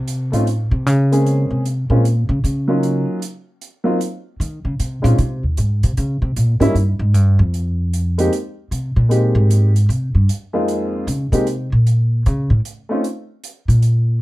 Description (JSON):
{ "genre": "jazz, small-group swing and bop", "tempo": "153 BPM", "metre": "4/4", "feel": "swing 65% on 8ths", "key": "Ab major, F minor from 10.7 s", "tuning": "A4 = 438 Hz", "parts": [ { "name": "upright bass", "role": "bass", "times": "0.0-14.2 s", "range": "Eb2 to Eb3", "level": "-15 LUFS", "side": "equal", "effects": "none" }, { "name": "hi-hat", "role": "drums", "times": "0.1-13.9 s", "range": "none", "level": "-34 LUFS", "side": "right 5 dB", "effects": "none" }, { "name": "warm upright piano", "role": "accompaniment", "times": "0.3-13.0 s", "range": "F2 to Ab4", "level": "-19 LUFS", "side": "equal", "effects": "none" } ], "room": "light reverb", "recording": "dark, warm production", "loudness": "-15 LUFS", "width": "side -18 dB against mid", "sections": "0.0-10.7 A section; 10.7-14.2 A section", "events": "upright bass solo 0.0-14.2", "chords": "0.0 F(b13) (rootless); 1.3 Bbm7; 2.8 Ebm9; 3.6 Gbmaj7#11; 4.4 Dbmaj7sus2; 6.0 Bbm7; 6.8 Fmadd9; 7.5 Abmaj9; 10.7 Fm11; 12.2 F7b13", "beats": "0.07 0.46 0.86 | 1.25 1.64 2.04 2.43 | 2.82 3.22 3.61 4.00 | 4.39 4.79 5.18 5.57 | 5.96 6.36 6.75 7.14 | 7.54 7.93 8.32 8.71 | 9.11 9.50 9.89 10.29 | 10.68 11.07 11.46 11.86 | 12.25 12.64 13.04 13.43 | 13.82" }